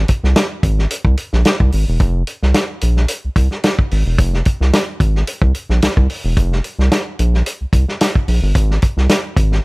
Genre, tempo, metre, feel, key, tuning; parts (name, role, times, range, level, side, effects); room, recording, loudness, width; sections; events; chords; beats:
funk; 110 BPM; 4/4; straight; F minor; A4 = 443 Hz
round analog bass; bass; 0.0-9.6 s; E1 to C2; -14 LUFS; equal
warm soul drum kit; drums; 0.1-9.6 s; hi-hat, kick drum, snare drum; -16 LUFS; equal
little or no reverb; -13 LUFS; side -26 dB against mid
0.0-9.6 A section
0.36 0.91 1.45 | 2.00 2.55 3.09 3.64 | 4.19 4.73 5.28 5.82 | 6.37 6.92 7.46 8.01 | 8.55 9.10